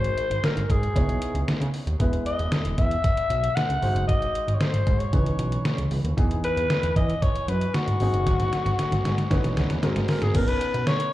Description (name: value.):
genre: early-eighties boogie funk.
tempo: 115 BPM.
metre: 4/4.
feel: straight.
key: C# dorian.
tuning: A4 = 440 Hz.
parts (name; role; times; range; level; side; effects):
growling alto saxophone; melody; 0.0-11.1 s; F#4 to F#5; -27 LUFS; left 2 dB; slapback echo, tape echo.
warm concert grand piano; accompaniment; 0.0-11.1 s; E3 to C#5; -31 LUFS; left 1 dB; slapback echo.
fat analog bass; bass; 0.0-10.8 s; E1 to E3; -25 LUFS; equal; none.
detuned 8-bit digital drum machine; drums; 0.0-11.1 s; crash cymbal, hi-hat, kick drum, snare drum; -25 LUFS; equal; none.
room: little or no reverb.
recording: live gig heard through the venue's PA, club reverb.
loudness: -21 LUFS.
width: side -15 dB against mid.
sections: 0.0-10.3 A section.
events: drum fill 8.3-10.3.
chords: 0.0 G#7; 1.0 C#m9; 2.0 E; 3.8 G#7; 5.1 C#m9; 6.2 Emaj7; 8.0 G#7; 9.3 C#m9; 9.8 G#9; 10.3 Badd9.